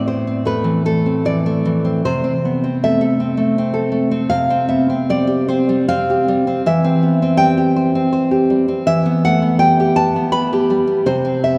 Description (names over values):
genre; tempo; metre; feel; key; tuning
romantic piece for solo classical guitar; 80 BPM; 3/4; uneven beats, rubato; unclear; A4 = 440 Hz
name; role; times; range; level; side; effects
nylon-string guitar; solo; 0.0-11.6 s; A2 to B5; -16 LUFS; equal; none
room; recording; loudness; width
wet church reverb, RT60 3.4 s; recorded in a church or concert hall; -16 LUFS; mono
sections
0.0-11.6 A section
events
none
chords
0.0 Am; 2.0 Am/C; 4.3 C5; 6.6 C/E; 8.9 Em; 11.1 C